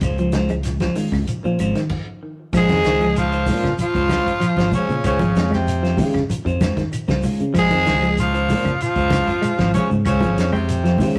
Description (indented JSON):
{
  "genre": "afrobeat",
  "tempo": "96 BPM",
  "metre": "4/4",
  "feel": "straight",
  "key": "Bb minor",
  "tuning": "A4 = 440 Hz",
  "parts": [
    { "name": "clean electric guitar", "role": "arpeggios", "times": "0.0-11.2 s", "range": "Db3 to Ab3", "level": "-26 LUFS", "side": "equal", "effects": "spring reverb, tape echo" },
    { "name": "semi-hollow electric guitar", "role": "stabs", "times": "0.0-11.2 s", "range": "Ab3 to C5", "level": "-28 LUFS", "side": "equal", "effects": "none" },
    { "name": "fingered electric bass", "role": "bass", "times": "0.0-11.2 s", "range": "Ab1 to Db3", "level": "-25 LUFS", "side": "equal", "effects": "none" },
    { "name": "warm soul drum kit", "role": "drums", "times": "0.0-11.2 s", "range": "crash cymbal, hi-hat, kick drum, snare drum", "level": "-30 LUFS", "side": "equal", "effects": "none" },
    { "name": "claves", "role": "percussion", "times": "0.0-11.2 s", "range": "none", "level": "-45 LUFS", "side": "equal", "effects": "none" },
    { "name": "congas", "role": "percussion", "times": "0.0-11.2 s", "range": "none", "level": "-27 LUFS", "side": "equal", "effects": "none" },
    { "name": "shekere", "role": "percussion", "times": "0.0-11.2 s", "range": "none", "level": "-33 LUFS", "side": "equal", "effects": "none" },
    { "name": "raspy tenor saxophone", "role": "melody", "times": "2.6-11.1 s", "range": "C4 to Ab4", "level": "-25 LUFS", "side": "equal", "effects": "none" },
    { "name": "breathy tenor saxophone", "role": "second line", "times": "2.6-11.1 s", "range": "C3 to Ab3", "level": "-28 LUFS", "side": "equal", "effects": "none" }
  ],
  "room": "moderate stone room reverb, RT60 1.0 s",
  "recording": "rough rehearsal-room recording, tube saturation",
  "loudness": "-19 LUFS",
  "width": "mono",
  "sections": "0.0-2.5 A section; 2.5-11.2 B section",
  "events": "stop 1.9-2.5",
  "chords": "0.0 Bbm9 (rootless); 5.0 Dbmaj7; 7.6 Bbm9; 10.1 Dbmaj7"
}